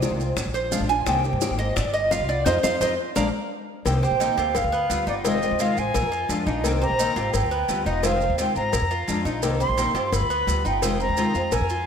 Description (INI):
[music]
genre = latin, Cuban son and guajira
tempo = 172 BPM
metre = 4/4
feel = straight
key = C minor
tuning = A4 = 440 Hz
[part]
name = flamenco guitar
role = accompaniment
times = 0.0-11.6 s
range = C3 to G4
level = -27 LUFS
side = left 2 dB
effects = ensemble chorus
[part]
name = upright bass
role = bass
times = 0.0-11.9 s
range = E1 to G2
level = -27 LUFS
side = equal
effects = none
[part]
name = bongos and cowbell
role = percussion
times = 0.0-11.7 s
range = none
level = -32 LUFS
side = left 6 dB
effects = none
[part]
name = maracas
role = percussion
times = 0.0-11.9 s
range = none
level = -34 LUFS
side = right 14 dB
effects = none
[part]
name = Cuban tres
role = arpeggios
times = 0.5-11.9 s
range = B3 to Ab5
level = -27 LUFS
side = right 2 dB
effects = none
[part]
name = concert flute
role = melody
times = 4.0-11.9 s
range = D5 to C6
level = -25 LUFS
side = equal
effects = ping-pong delay
[sound]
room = wet lush hall reverb, RT60 1.8 s, studio reverb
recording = dreamy mix soaked in reverb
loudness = -20 LUFS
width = side -7 dB against mid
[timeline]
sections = 0.0-3.9 A section; 3.9-11.9 B section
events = Cuban tres solo 0.0-3.9; band accent 2.5-3.9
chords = 0.4 Bb7; 1.1 Cm7; 1.8 G7; 2.5 F5; 3.2 Bb7; 3.9 Cm7; 4.6 G7; 5.2 Fm7; 5.9 Bb7; 6.6 Cm7; 7.3 G7; 8.0 Fm7; 8.7 Bb7; 9.4 Cm7; 10.1 G7; 10.8 Fm7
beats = 0.02 0.37 0.72 | 1.07 1.42 1.76 2.11 | 2.46 2.81 3.16 3.51 | 3.86 4.20 4.55 4.90 | 5.25 5.60 5.95 6.29 | 6.64 6.99 7.34 7.69 | 8.04 8.38 8.73 9.08 | 9.43 9.78 10.12 10.47 | 10.82 11.17 11.52